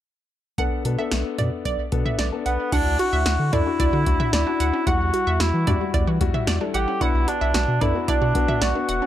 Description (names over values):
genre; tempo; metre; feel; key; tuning
synth-pop; 112 BPM; 4/4; straight; B minor; A4 = 440 Hz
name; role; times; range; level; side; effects
analog pluck; second line; 0.6-9.0 s; D5 to F#5; -29 LUFS; right 6 dB; chorus, tape echo
warm grand piano; accompaniment; 0.6-9.1 s; G3 to A4; -28 LUFS; left 9 dB; none
round analog bass; bass; 0.6-9.0 s; E1 to E3; -24 LUFS; equal; none
electro analog drum machine; drums; 0.6-9.0 s; crash cymbal, hi-hat, kick drum, snare drum, toms; -25 LUFS; equal; none
dark cor anglais; melody; 2.5-9.1 s; B3 to G4; -24 LUFS; equal; tape echo
wide unison pluck; arpeggios; 2.7-9.1 s; C#4 to F#4; -32 LUFS; right 4 dB; tape echo
room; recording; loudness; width
light reverb; dark, warm production; -19 LUFS; side -12 dB against mid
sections
0.6-2.7 A section; 2.7-9.1 B section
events
none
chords
0.6 Bm7; 2.7 Dadd9; 4.9 Emadd9; 7.0 Bm